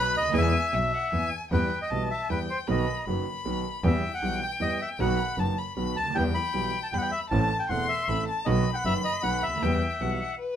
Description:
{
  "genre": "tango",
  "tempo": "155 BPM",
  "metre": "3/4",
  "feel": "rubato",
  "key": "E harmonic minor",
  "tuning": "A4 = 440 Hz",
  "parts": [
    { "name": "bandoneon", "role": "melody", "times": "0.0-10.4 s", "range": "B4 to B5", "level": "-29 LUFS", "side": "left 1 dB", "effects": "none" },
    { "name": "rich violin", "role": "second line", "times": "0.0-10.6 s", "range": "B4 to C6", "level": "-32 LUFS", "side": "left 4 dB", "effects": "none" },
    { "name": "clear concert grand piano", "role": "accompaniment", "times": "0.0-10.2 s", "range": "E1 to A4", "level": "-30 LUFS", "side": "right 2 dB", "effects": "none" },
    { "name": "warm double bass", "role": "bass", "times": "0.0-10.2 s", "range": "E1 to E2", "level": "-30 LUFS", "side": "equal", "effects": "none" }
  ],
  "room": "moderate club reverb, RT60 0.7 s",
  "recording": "minimal, uncompressed stereo recording",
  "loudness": "-24 LUFS",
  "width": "side -9 dB against mid",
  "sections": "0.0-1.5 A section; 1.5-10.6 B section",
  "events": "none",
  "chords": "0.4 E; 1.5 Em; 2.7 B; 3.8 Em; 5.0 B; 6.2 Em; 7.3 Am; 8.5 B; 9.6 Em"
}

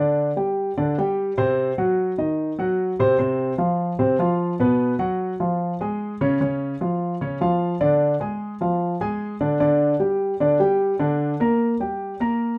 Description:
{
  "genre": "jazz",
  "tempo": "150 BPM",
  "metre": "4/4",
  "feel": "straight",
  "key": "unclear",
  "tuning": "A4 = 440 Hz",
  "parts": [
    { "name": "warm grand piano", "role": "solo", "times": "0.0-12.5 s", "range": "Cb3 to Bb5", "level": "-22 LUFS", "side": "equal", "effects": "none" }
  ],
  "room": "moderate studio ambience, RT60 0.5 s",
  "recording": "none",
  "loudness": "-22 LUFS",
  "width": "mono",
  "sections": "0.0-12.6 A section",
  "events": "none",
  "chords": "0.0 Csus2; 1.6 Cdim; 3.2 F5; 4.8 B5; 5.6 Db; 8.0 Ddim; 9.6 Gm/D; 12.0 Fsus4 (rootless)"
}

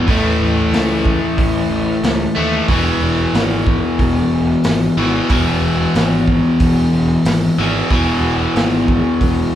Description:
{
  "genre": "blues rock power trio and southern rock",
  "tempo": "92 BPM",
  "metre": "4/4",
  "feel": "straight",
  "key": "E major",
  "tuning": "A4 = 440 Hz",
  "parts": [
    { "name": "overdriven electric guitar", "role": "riff", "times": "0.0-9.6 s", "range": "E2 to A3", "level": "-15 LUFS", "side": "left 1 dB", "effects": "none" },
    { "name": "fuzz picked electric bass", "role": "bass", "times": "0.1-9.4 s", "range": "E1 to D#2", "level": "-21 LUFS", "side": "right 1 dB", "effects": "overdrive" },
    { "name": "raw garage drum kit", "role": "drums", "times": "0.1-9.4 s", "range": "hi-hat, kick drum, snare drum", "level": "-19 LUFS", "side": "right 1 dB", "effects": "none" }
  ],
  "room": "moderate large studio reverb, RT60 1.4 s",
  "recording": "band playing live in one room",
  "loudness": "-13 LUFS",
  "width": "side -11 dB against mid",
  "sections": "0.0-9.6 A section",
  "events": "none",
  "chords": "0.1 A; 2.7 E"
}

